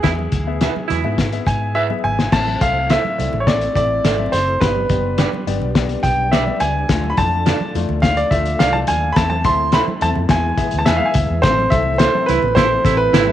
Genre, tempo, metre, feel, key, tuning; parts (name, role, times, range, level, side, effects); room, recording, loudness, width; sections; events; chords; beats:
uptempo 1960s-style soul; 105 BPM; 4/4; straight; A harmonic minor; A4 = 441 Hz
clear baby grand piano; melody; 0.0-13.3 s; G#4 to C6; -19 LUFS; right 1 dB
warm saxophone section; second line; 0.0-1.3, 12.3-13.3 s; B2 to E4; -23 LUFS; right 11 dB
warm upright piano; accompaniment; 0.0-13.3 s; A2 to E5; -26 LUFS; left 9 dB
vintage muted fingered electric bass; bass; 0.0-13.3 s; F#1 to G#2; -22 LUFS; equal
cloth-damped thuddy drum kit; drums; 0.0-13.3 s; crash cymbal, hi-hat, kick drum, snare drum; -19 LUFS; left 2 dB; vintage 12-bit sampler grit
congas; percussion; 0.2-13.3 s; -30 LUFS; right 6 dB
electric guitar through a small old amp; stabs; 0.6-13.2 s; D4 to E5; -27 LUFS; right 11 dB
mellow tonewheel organ; sustained chords; 2.3-13.3 s; E3 to E4; -30 LUFS; right 1 dB; slow rotary speaker, chorus vibrato
moderate spring reverb, RT60 2.4 s; 1960s-style stereo with parts hard left and right, vinyl crackle; -15 LUFS; side -11 dB against mid
0.0-2.3 A section; 2.3-11.4 B section; 11.4-13.3 C section
drum fill 1.8-2.3
0.0 E; 2.3 Am; 4.6 G; 6.9 Dm; 9.2 Am; 10.3 E; 11.4 Am
| 0.04 0.61 1.18 1.76 | 2.33 2.90 3.47 4.04 | 4.61 5.18 5.75 6.32 | 6.89 7.46 8.03 8.60 | 9.16 9.73 10.30 10.87 | 11.44 12.00 12.57 13.13